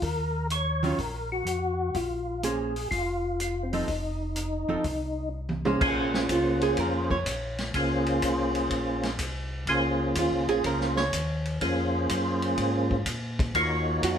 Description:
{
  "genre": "soul jazz organ trio",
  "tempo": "124 BPM",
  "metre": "4/4",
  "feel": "swing 68% on 8ths",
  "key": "Bb minor",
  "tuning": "A4 = 439 Hz",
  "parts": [
    { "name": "percussive tonewheel organ", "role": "melody", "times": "0.0-14.2 s", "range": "Bb3 to Db5", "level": "-27 LUFS", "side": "equal", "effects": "slow rotary speaker, chorus vibrato" },
    { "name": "mellow tonewheel organ", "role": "bass", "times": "0.0-14.2 s", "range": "F1 to Bb2", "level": "-32 LUFS", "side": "left 1 dB", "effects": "slow rotary speaker" },
    { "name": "vintage drum kit", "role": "drums", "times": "0.0-14.2 s", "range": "crash cymbal, hi-hat, kick drum, ride cymbal, snare drum, toms", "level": "-32 LUFS", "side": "equal", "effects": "none" },
    { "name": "archtop guitar, miked and amplified", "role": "accompaniment", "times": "0.8-14.2 s", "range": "Eb3 to Db5", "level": "-29 LUFS", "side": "right 4 dB", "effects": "none" }
  ],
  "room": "wet studio reverb, RT60 0.8 s",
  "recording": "band playing live in one room",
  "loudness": "-25 LUFS",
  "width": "side -8 dB against mid",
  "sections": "0.0-5.8 A section; 5.8-14.2 B section",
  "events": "drum fill 5.3-5.8; hollow-body jazz guitar solo 5.8-14.2",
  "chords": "0.0 Ebm9; 1.9 F7(no3); 5.8 Bbm9; 13.5 Ebm9"
}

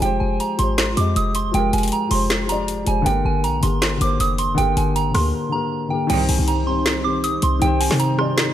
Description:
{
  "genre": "hip hop, trap",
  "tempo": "158 BPM",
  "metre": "4/4",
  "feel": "half-time",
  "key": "C minor",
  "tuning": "A4 = 445 Hz",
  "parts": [
    { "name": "soft synth bell", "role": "melody", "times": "0.0-8.5 s", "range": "G5 to Eb6", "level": "-23 LUFS", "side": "right 4 dB", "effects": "chorus" },
    { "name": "dark concert grand piano", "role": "accompaniment", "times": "0.0-8.5 s", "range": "D3 to Eb5", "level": "-23 LUFS", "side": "left 4 dB", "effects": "none" },
    { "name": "short 808-style bass", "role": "bass", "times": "0.0-8.5 s", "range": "F1 to C3", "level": "-22 LUFS", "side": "equal", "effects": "none" },
    { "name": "trap drum kit", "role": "drums", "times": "0.0-8.5 s", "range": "crash cymbal, hi-hat, rim click, snare drum", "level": "-24 LUFS", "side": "left 1 dB", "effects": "none" },
    { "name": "glass harmonica", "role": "sustained chords", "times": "6.1-8.5 s", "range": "G3 to C5", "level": "-28 LUFS", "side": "right 2 dB", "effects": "none" },
    { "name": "bright symphonic string section", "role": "stabs", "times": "6.1-6.5 s", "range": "C2 to Eb3", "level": "-28 LUFS", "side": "right 4 dB", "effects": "none" }
  ],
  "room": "light reverb, small room ambience",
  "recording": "none",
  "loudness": "-17 LUFS",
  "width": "side -11 dB against mid",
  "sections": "0.0-6.1 A section; 6.1-8.5 B section",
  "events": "break 5.3-6.1",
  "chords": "0.0 Fmadd9; 3.1 Gm; 6.1 Cm"
}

